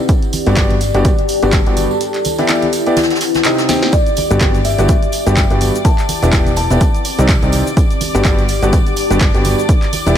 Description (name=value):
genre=piano house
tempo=125 BPM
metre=4/4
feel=swing 57% on 16ths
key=G major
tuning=A4 = 443 Hz
part: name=deep dark ambient pad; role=texture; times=0.0-10.2 s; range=C4 to A5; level=-20 LUFS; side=left 2 dB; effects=chorus, built-in reverb, sidechain pumping
part: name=electronic kick drum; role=drums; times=0.1-9.8 s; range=none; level=-14 LUFS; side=equal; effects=none
part: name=punchy analog drum machine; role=drums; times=0.1-10.2 s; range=cabasa, handclaps, hi-hat, snare drum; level=-22 LUFS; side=right 1 dB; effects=none
part: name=shaker and snare drum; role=drums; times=0.1-10.2 s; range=none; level=-27 LUFS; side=equal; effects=none
part: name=tambourine and congas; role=percussion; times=0.1-10.1 s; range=none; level=-27 LUFS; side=right 4 dB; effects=none
part: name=clear baby grand piano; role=riff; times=0.5-10.2 s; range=G2 to G5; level=-18 LUFS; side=left 1 dB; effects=vintage 12-bit sampler grit, sidechain pumping, low-pass filter, ping-pong delay
part: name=plucky analog bass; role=bass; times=0.5-10.1 s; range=E1 to C2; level=-16 LUFS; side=equal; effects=sidechain pumping
part: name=kalimba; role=melody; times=3.9-6.9 s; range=D5 to A5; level=-22 LUFS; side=left 2 dB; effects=ping-pong delay
part: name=clear studio string section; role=sustained chords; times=3.9-10.2 s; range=D5 to D6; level=-26 LUFS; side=left 1 dB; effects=sidechain pumping
room=light reverb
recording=none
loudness=-11 LUFS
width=side -10 dB against mid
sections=0.0-10.2 A section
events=kick drops out 2.0-3.9; drum fill 3.7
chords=0.1 Gmaj7; 2.0 Em7; 3.0 Cmadd9; 3.9 Gmaj7; 5.8 Em7; 6.8 Cmadd9; 7.8 Gmaj7